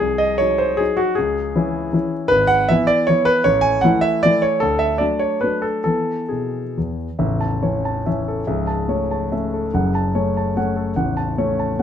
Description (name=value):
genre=classical, romantic triple-time dance for piano with dotted rhythms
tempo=129-166 BPM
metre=3/4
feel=rubato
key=A major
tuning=A4 = 440 Hz
part: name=warm concert grand piano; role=solo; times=0.0-11.8 s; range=A0 to A5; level=-17 LUFS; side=equal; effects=none
room=moderate stone room reverb, RT60 1.0 s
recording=close, detailed microphones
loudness=-17 LUFS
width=side -9 dB against mid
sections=0.0-7.2 A section; 7.2-11.8 B section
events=none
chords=0.0 Cdim; 1.2 C#m; 2.3 E/G#; 3.4 A5; 4.6 D; 5.9 E; 7.2 A; 8.5 A/C#; 9.7 F#m; 11.0 F#m/A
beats=| 0.02 0.42 0.81 | 1.18 1.56 1.94 | 2.31 2.69 3.08 | 3.45 3.83 4.25 | 4.63 5.01 5.43 | 5.86 6.31 6.76 | 7.19 7.63 8.06 | 8.47 8.89 9.33 | 9.74 10.16 10.57 | 10.97 11.38 11.79